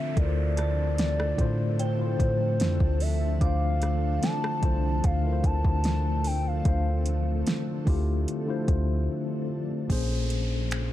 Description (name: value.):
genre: contemporary R&B.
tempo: 74 BPM.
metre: 4/4.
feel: straight.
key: D minor.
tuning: A4 = 441 Hz.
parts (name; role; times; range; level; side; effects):
hollow clarinet-like synth lead; melody; 0.0-7.3 s; C5 to A5; -32 LUFS; equal; chorus, digital delay.
mellow tine electric piano; accompaniment; 0.0-10.9 s; Bb2 to C5; -30 LUFS; left 3 dB; fast stereo tremolo.
granular cloud pad; sustained chords; 0.0-10.9 s; Db3 to A4; -36 LUFS; right 1 dB; built-in reverb.
downlifter; sound effects; 0.0-3.4, 9.9-10.9 s; none; -42 LUFS; right 1 dB; none.
soft 808-style bass; bass; 0.2-10.9 s; Bb1 to A2; -27 LUFS; equal; none.
smooth R&B drum kit; drums; 0.2-10.9 s; finger snaps, hi-hat, kick drum, rim click, snare drum; -27 LUFS; equal; overdrive.
soft synth bell; texture; 0.6-5.0 s; G5 to D6; -46 LUFS; right 3 dB; chorus, digital delay.
room: little or no reverb.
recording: dark, warm production.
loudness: -24 LUFS.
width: side -13 dB against mid.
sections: 0.0-9.9 A section; 9.9-10.9 B section.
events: break 9.1-9.9.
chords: 0.0 Dm9; 9.9 Bbm9.